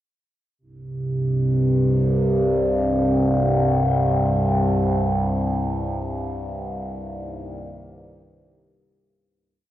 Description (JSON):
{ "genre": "dark ambient drone", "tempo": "free time", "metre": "none", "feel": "none", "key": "C minor", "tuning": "A4 = 441 Hz", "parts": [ { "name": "sweeping resonant pad", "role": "sustained chords", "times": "0.9-9.3 s", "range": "C3 to C4", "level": "-22 LUFS", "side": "right 1 dB", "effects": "chorus, phaser" }, { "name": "overtone-sweeping drone", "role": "drone", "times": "1.1-9.4 s", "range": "C2 to G2", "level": "-23 LUFS", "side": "equal", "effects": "chorus, built-in reverb" } ], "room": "wet cathedral reverb, RT60 5.1 s", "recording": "worn, warbling old tape, cassette tape, warbly pitch drift", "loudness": "-19 LUFS", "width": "side -13 dB against mid", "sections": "0.6-9.3 A section", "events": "fade-out on analog synth pad 0.6-9.3; fade-out 5.0-9.3", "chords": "0.6 C5; 5.0 Cm7", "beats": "free time" }